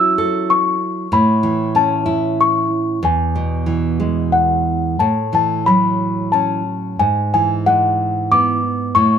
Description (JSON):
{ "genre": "children's music, lullaby", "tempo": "92 BPM", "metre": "3/4", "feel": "uneven beats, rubato", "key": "A major", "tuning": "A4 = 440 Hz", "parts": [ { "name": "small celesta", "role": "melody", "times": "0.0-9.2 s", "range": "F#5 to E6", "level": "-16 LUFS", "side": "left 3 dB", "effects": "plate reverb" }, { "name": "nylon-string guitar", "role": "accompaniment", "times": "0.0-9.2 s", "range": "E2 to A4", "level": "-18 LUFS", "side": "right 2 dB", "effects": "none" } ], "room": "moderate studio reverb, RT60 0.6 s", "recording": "dark, warm production", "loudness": "-14 LUFS", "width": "side -8 dB against mid", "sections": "0.0-5.0 A section; 5.0-9.2 B section", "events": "none", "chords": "0.0 F#m7; 1.1 Aadd9; 3.0 E; 5.0 A6; 7.0 Eadd9/G#", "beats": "0.48 | 1.10 1.74 2.38 | 3.02 3.66 4.32 | 5.00 5.67 6.33 | 6.99 7.66 8.31 | 8.95" }